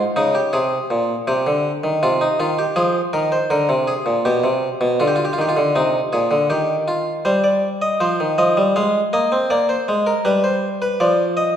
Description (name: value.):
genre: classical, baroque-style two-part invention for harpsichord.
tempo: 80 BPM.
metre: 4/4.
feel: straight.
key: F minor, C minor from 7.3 s.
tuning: A4 = 440 Hz.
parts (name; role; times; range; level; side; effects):
harpsichord; solo; 0.0-11.6 s; Bb2 to F5; -16 LUFS; equal; none.
room: wet recital hall reverb, RT60 1.4 s.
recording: heard from further back in the room.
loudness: -16 LUFS.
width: side -9 dB against mid.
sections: 0.0-7.3 A section; 7.3-11.6 B section.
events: none.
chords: 0.0 Fm (rootless); 1.3 Cm; 2.8 Fm; 4.3 G7/B; 5.8 Cm; 7.3 Cm/G; 8.8 Fm/Ab; 10.3 G7.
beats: 0.54 | 1.28 2.02 2.77 3.51 | 4.25 5.00 5.75 6.50 | 7.25 8.00 8.76 9.51 | 10.25 11.00.